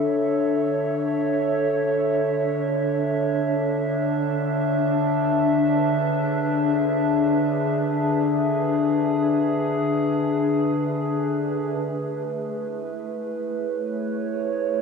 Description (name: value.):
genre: ambient.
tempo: free time.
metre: none.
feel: none.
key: unclear.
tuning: A4 = 440 Hz.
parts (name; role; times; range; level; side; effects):
warbly tape-like pad; solo; 0.0-14.8 s; D3 to E5; -21 LUFS; left 1 dB; chorus, built-in reverb, dub echo.
room: wet plate reverb, RT60 2.8 s.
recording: echo-heavy mix.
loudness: -21 LUFS.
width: side -5 dB against mid.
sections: 0.0-11.8 A section; 11.8-14.8 B section.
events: none.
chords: 0.0 A/D; 4.4 E/D; 11.8 Amaj7.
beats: free time.